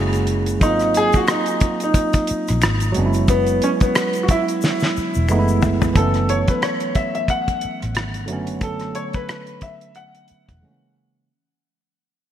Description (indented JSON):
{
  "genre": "R&B, neo-soul",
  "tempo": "90 BPM",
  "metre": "4/4",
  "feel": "swing 57% on 16ths",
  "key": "F# minor",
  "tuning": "A4 = 440 Hz",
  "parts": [
    { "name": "warm grand piano", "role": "melody", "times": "0.0-10.9 s", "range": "B3 to F#5", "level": "-22 LUFS", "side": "equal", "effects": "lush chorus, ping-pong delay" },
    { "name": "barky tine electric piano", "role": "accompaniment", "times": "0.0-11.3 s", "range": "C#3 to G#4", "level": "-23 LUFS", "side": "right 3 dB", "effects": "none" },
    { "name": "vintage muted fingered electric bass", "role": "bass", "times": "0.0-10.6 s", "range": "E1 to A#1", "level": "-21 LUFS", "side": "equal", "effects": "none" },
    { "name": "damped 70s drum kit", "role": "drums", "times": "0.1-10.6 s", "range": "hi-hat, kick drum, rim click, snare drum, toms", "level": "-20 LUFS", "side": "equal", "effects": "none" },
    { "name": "egg shaker and finger snaps", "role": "percussion", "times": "0.1-5.9 s", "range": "none", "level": "-36 LUFS", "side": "left 7 dB", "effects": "none" }
  ],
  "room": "moderate lush hall reverb, RT60 2.2 s",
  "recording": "bright 1980s-style digital production, vinyl crackle",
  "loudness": "-17 LUFS",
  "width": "side -10 dB against mid",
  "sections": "0.0-6.0 A section; 6.0-11.3 B section",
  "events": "drum fill 4.6-6.0; fade-out 6.0-11.3; break 10.6-11.3",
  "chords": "0.0 F#9; 0.6 G#7; 3.0 C#m7/F#; 5.3 F#m11; 6.0 F#m9; 8.3 E9sus4/F# (rootless); 10.6 F#9",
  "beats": "| 0.62 1.28 1.95 2.62 | 3.28 3.95 4.62 5.28 | 5.95 6.62 7.28 7.95 | 8.62 9.28 9.95 10.62"
}